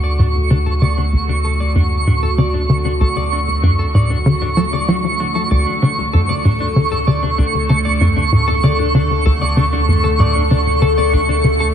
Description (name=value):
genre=ambient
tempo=96 BPM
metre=4/4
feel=straight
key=D major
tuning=A4 = 438 Hz
part: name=evolving wavetable pad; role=sustained chords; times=0.0-11.7 s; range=D3 to A4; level=-22 LUFS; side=left 1 dB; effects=phaser, built-in reverb
part: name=clean electric guitar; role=arpeggios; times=0.0-11.7 s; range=D4 to D5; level=-27 LUFS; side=left 3 dB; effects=auto-pan, ping-pong delay
part: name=tight sequencer bass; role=riff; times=0.0-11.5 s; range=D2 to F#3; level=-16 LUFS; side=equal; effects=lush chorus, ping-pong delay
part: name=warm sub bass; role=bass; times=0.0-11.7 s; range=D2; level=-20 LUFS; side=equal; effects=none
part: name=twinkling granular texture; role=texture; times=0.0-11.7 s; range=C#6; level=-20 LUFS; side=right 3 dB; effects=built-in reverb
room=moderate huge ambient reverb, RT60 8.1 s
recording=in a vast, echoing space, cassette tape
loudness=-13 LUFS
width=side -9 dB against mid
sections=0.0-11.7 A section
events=fade-in on clean electric guitar 0.0-11.7; fade-in on ambient pad 0.0-11.7; filter sweep on analog synth bass 0.0-11.7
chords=0.0 Dmaj7